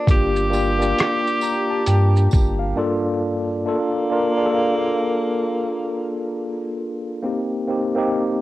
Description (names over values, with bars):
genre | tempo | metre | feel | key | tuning
lo-fi hip hop | 67 BPM | 4/4 | swing 62% on 16ths | unclear | A4 = 441 Hz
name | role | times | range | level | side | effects
breathy tenor saxophone | melody | 0.0-6.8 s | Bb3 to G4 | -24 LUFS | equal | low-pass filter, cassette tape
tine electric piano | accompaniment | 0.0-8.4 s | G2 to Bb5 | -21 LUFS | equal | medium stereo tremolo, cassette tape, low-pass filter
saturated sub bass | bass | 0.1-2.7 s | G1 to G2 | -19 LUFS | equal | none
lo-fi sampler-style drum kit | drums | 0.1-2.6 s | hi-hat, kick drum, rim click, shaker | -18 LUFS | equal | vintage 12-bit sampler grit
tambourine | percussion | 0.5-2.6 s | none | -39 LUFS | right 6 dB | none
room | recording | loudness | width
light reverb, digital ambience | home recording on cassette | -18 LUFS | side -16 dB against mid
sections
0.0-3.7 A section; 3.7-8.4 B section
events
break 2.8-3.7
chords
0.1 Gm9; 3.7 Bbmaj7; 7.2 Bbsus2